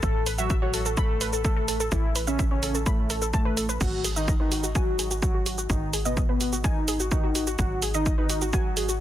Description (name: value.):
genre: melodic techno.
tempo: 127 BPM.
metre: 4/4.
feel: straight.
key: G# phrygian.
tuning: A4 = 441 Hz.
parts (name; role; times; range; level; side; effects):
fat analog lead; melody; 0.0-8.9 s; A3 to A4; -29 LUFS; left 1 dB; lush chorus, vintage 12-bit sampler grit, sidechain pumping, ping-pong delay.
warbly dusty pluck; arpeggios; 0.0-9.0 s; F#4 to B5; -32 LUFS; equal; chorus, sidechain pumping, dub echo.
tight sequencer bass; bass; 0.0-9.0 s; G#1 to A1; -31 LUFS; equal; sidechain pumping.
electronic kick drum; drums; 0.0-8.6 s; none; -26 LUFS; equal; overdrive.
punchy analog drum machine; drums; 0.0-9.0 s; crash cymbal, hi-hat, shaker; -30 LUFS; right 3 dB; sidechain pumping on hats, sidechain pumping on perc, sidechain pumping on cymbals.
room: little or no reverb.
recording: dense, heavily limited modern master.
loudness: -23 LUFS.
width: side -12 dB against mid.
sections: 0.0-9.0 A section.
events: none.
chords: 0.0 Aadd9; 3.8 G#7(no3).